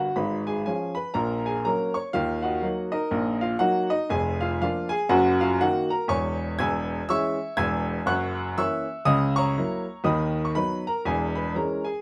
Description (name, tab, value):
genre	jazz, stride piano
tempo	121 BPM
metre	4/4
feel	swing 62% on 8ths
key	unclear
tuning	A4 = 439 Hz
part	clear upright piano	solo	0.0-12.0 s	E1 to G#6	-26 LUFS	equal	none
room	moderate club reverb, RT60 0.5 s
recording	none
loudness	-25 LUFS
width	mono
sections	0.0-12.0 A section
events	none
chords	0.2 C#7/G#; 1.2 F#/A#; 2.1 D#m; 4.1 A#7/E#; 5.1 D#m/F#; 6.1 C#m/E; 8.1 F#7; 9.1 F#7/C#; 10.1 B/D#; 11.0 C#m/E